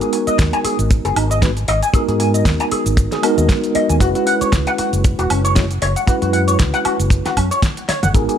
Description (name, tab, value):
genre	nu-disco, nu disco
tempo	116 BPM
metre	4/4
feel	swing 56% on 16ths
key	unclear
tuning	A4 = 440 Hz
part	mellow tine electric piano	accompaniment	0.0-8.4 s	G#3 to C#5	-20 LUFS	right 1 dB	medium stereo tremolo, vintage 12-bit sampler grit, sidechain pumping, tape echo
part	electric guitar with an envelope filter	riff	0.0-8.4 s	C#4 to G#5	-20 LUFS	left 2 dB	analog chorus, low-pass filter, tape echo
part	pop drum kit	drums	0.0-8.4 s	hi-hat, shaker, snare drum, toms, woodblock	-23 LUFS	right 1 dB	studio reverb
part	fingered electric bass	bass	0.3-8.3 s	E1 to G#2	-19 LUFS	equal	tube saturation, sidechain pumping
part	kick drum	drums	0.4-8.3 s	none	-15 LUFS	equal	studio reverb
room	light reverb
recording	none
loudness	-14 LUFS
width	side -9 dB against mid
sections	0.0-8.1 A section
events	drum fill 7.9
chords	0.0 G#m7; 4.0 F#9sus4